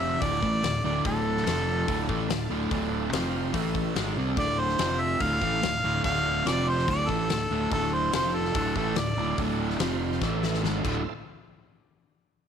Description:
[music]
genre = blues rock power trio and southern rock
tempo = 144 BPM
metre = 4/4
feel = straight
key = D minor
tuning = A4 = 440 Hz
[part]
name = clear harmonica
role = melody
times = 0.0-9.4 s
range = A4 to F5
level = -28 LUFS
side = right 1 dB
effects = overdrive
[part]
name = bright tonewheel organ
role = sustained chords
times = 0.0-11.1 s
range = E3 to C5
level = -39 LUFS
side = right 10 dB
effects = slow rotary speaker, overdrive, chorus vibrato
[part]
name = crunchy overdriven guitar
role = riff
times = 0.0-11.0 s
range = D2 to C4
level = -28 LUFS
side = right 1 dB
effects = none
[part]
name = overdriven fingered electric bass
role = bass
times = 0.0-11.0 s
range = D1 to C2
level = -32 LUFS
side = equal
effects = none
[part]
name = big rock drum kit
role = drums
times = 0.2-10.9 s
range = crash cymbal, hi-hat, kick drum, snare drum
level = -32 LUFS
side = left 5 dB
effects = none
[sound]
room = light reverb, studio ambience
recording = 1960s-style stereo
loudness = -24 LUFS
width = side -8 dB against mid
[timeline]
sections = 0.0-11.1 A section; 11.1-12.5 B section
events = drum fill 10.2-11.1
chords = 0.2 Dm; 1.5 F5; 1.9 Dm; 3.1 F5; 3.5 A5; 4.0 Dm; 4.8 F5; 5.2 Dm; 6.5 F5; 6.9 Dm; 8.1 F5; 8.5 Dm; 9.8 F5; 10.2 A5; 10.6 Dm; 10.8 Dm7; 11.1 N.C.

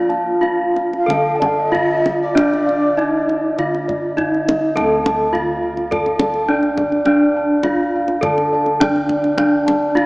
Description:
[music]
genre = Javanese gamelan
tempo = 102 BPM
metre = 4/4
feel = uneven beats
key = unclear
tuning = A4 = 440 Hz
[part]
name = gamelan-type bronze metallophone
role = melody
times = 0.0-10.1 s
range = D4 to A4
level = -18 LUFS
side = equal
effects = none
[part]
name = gamelan-type bossed gongs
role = arpeggios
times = 0.0-10.1 s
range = D5 to A5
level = -25 LUFS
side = equal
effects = none
[part]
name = gamelan-type bronze metallophone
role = arpeggios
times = 0.0-10.1 s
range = D5 to A5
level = -21 LUFS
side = equal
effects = none
[part]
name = gamelan-type bossed gongs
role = bass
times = 0.0-10.1 s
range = D2 to A4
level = -22 LUFS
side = equal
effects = none
[part]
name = kendang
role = percussion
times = 0.1-10.1 s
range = none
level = -24 LUFS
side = equal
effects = none
[part]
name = mellow bansuri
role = second line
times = 1.0-3.7 s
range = D5 to A5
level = -23 LUFS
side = equal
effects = none
[sound]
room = wet cathedral reverb, RT60 5.6 s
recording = in a vast, echoing space, small speaker sound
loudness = -14 LUFS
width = side -26 dB against mid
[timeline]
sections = 0.0-4.8 A section; 4.8-10.1 B section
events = none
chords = none

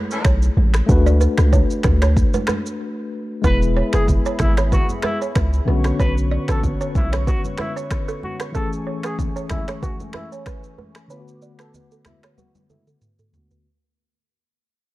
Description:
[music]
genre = afrobeats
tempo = 94 BPM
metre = 4/4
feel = swing 55% on 16ths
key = unclear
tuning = A4 = 440 Hz
[part]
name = tine electric piano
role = accompaniment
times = 0.0-13.7 s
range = D3 to C#5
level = -26 LUFS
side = left 3 dB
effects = medium stereo tremolo, low-pass filter
[part]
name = afro-pop drum kit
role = drums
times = 0.1-13.6 s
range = finger snaps, kick drum, rim click, shaker, toms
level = -22 LUFS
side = equal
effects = none
[part]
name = balafon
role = riff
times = 0.2-13.6 s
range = A4 to D5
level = -29 LUFS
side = right 7 dB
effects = low-pass filter, digital delay
[part]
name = warm 808-style bass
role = bass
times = 0.2-7.3 s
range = E1 to D2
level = -17 LUFS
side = equal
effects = none
[part]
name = congas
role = percussion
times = 0.6-13.5 s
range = none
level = -30 LUFS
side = right 1 dB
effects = none
[part]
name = hollow soft pad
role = sustained chords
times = 3.4-13.6 s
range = A3 to D6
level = -34 LUFS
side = left 1 dB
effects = chorus, low-pass filter
[part]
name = warm trumpet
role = melody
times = 3.5-13.5 s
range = E4 to B4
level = -29 LUFS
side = left 1 dB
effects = low-pass filter
[sound]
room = small room reverb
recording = dark, warm production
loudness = -17 LUFS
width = side -18 dB against mid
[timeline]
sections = 0.0-3.4 A section; 3.4-13.7 B section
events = break 2.8-3.4; fade-out 3.4-13.7; filter sweep 3.4-13.7; drum fill 12.4-13.7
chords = 0.0 Amaj7; 0.9 D6; 3.4 E; 5.7 Bmadd9; 8.5 Amaj7; 11.1 D6

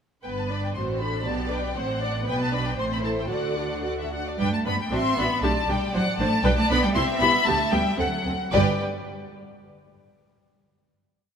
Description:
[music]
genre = quick classical-period movement for string orchestra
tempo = 117 BPM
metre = 2/4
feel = rubato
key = G major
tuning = A4 = 444 Hz
[part]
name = rich studio violin section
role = melody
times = 0.2-8.8 s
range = F#5 to C6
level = -27 LUFS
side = left 4 dB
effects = none
[part]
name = rich studio cello section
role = bass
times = 0.2-8.8 s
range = G2 to C4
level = -28 LUFS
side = right 2 dB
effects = none
[part]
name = rich studio double bass section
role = bass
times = 0.2-8.8 s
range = G1 to G2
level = -30 LUFS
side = right 2 dB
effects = none
[part]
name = rich studio violin section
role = second line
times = 0.3-8.8 s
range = B4 to F#5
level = -30 LUFS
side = left 3 dB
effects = none
[part]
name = rich studio viola section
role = accompaniment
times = 0.3-8.8 s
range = G3 to D5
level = -29 LUFS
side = right 1 dB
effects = none
[sound]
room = moderate concert hall reverb, RT60 2.5 s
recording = none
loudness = -22 LUFS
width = side -7 dB against mid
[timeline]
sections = 0.2-4.4 A section; 4.4-8.5 A section; 8.5-9.6 final chord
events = none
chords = 0.2 G; 0.8 D7/A; 1.3 G/B; 1.8 D7/A; 2.3 Bm7; 2.8 Am; 3.3 D; 4.4 G; 4.9 D7/A; 5.4 G; 5.9 D7/A; 6.4 G; 7.0 C; 7.5 G/D; 8.0 D7; 8.5 G

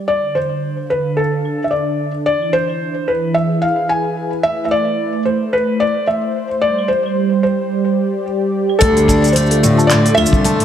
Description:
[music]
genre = folktronica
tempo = 110 BPM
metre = 4/4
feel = swing 56% on 16ths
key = unclear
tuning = A4 = 440 Hz
[part]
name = warm analog pad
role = sustained chords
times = 0.0-10.6 s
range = D3 to F5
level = -19 LUFS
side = right 1 dB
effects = chorus
[part]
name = felt-muted upright piano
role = melody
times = 0.1-10.6 s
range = A4 to G#5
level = -18 LUFS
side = left 1 dB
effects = ping-pong delay
[part]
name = organic electronic drum kit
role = drums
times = 1.5-10.6 s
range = claves, handclaps, hi-hat, shaker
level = -21 LUFS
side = equal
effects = low-pass filter on perc, low-pass filter on hats, low-pass filter on snare, low-pass filter on room
[part]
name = music box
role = second line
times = 8.8-10.6 s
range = A4 to A5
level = -21 LUFS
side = left 1 dB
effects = digital delay
[part]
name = picked steel-string acoustic guitar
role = arpeggios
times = 8.8-10.6 s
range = D3 to F4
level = -18 LUFS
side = equal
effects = ping-pong delay
[part]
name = muted cello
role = bass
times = 8.8-10.6 s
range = C2 to A2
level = -15 LUFS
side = equal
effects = none
[part]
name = kick drum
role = drums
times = 8.8-10.4 s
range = none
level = -17 LUFS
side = equal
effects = none
[sound]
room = light reverb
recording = none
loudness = -14 LUFS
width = side -9 dB against mid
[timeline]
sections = 0.0-8.8 A section; 8.8-10.6 B section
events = filter sweep on analog synth pad 0.0-8.8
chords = 0.1 Dm; 2.3 E; 4.4 Amadd9; 6.6 Gsus4; 8.8 Dm

